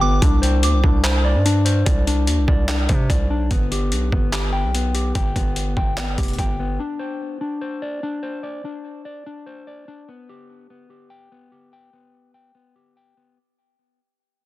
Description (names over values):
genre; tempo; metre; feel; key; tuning
hip hop, trap; 146 BPM; 4/4; half-time; unclear; A4 = 441 Hz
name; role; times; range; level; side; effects
mellow electric guitar; arpeggios; 0.0-13.4 s; B3 to G5; -25 LUFS; left 4 dB; digital delay
distorted 808-style bass; bass; 0.0-6.8 s; F1 to C3; -20 LUFS; right 1 dB; distortion
boom bap sampler-style drum kit; drums; 0.2-6.5 s; handclaps, hi-hat, kick drum; -21 LUFS; equal; overdrive
room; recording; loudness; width
little or no reverb; dense, heavily limited modern master; -18 LUFS; side -16 dB against mid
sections
0.2-13.4 A section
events
fade-out 0.2-13.4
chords
0.2 Csus2; 3.5 G; 6.8 Csus2; 10.1 G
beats
| 0.22 0.63 1.04 1.45 | 1.86 2.27 2.69 3.10 | 3.51 3.92 4.33 4.74 | 5.15 5.56 5.97 6.38 | 6.80 7.21 7.62 8.03 | 8.44 8.85 9.26 9.67 | 10.08 10.49 10.90 11.32 | 11.73 12.14 12.55 12.96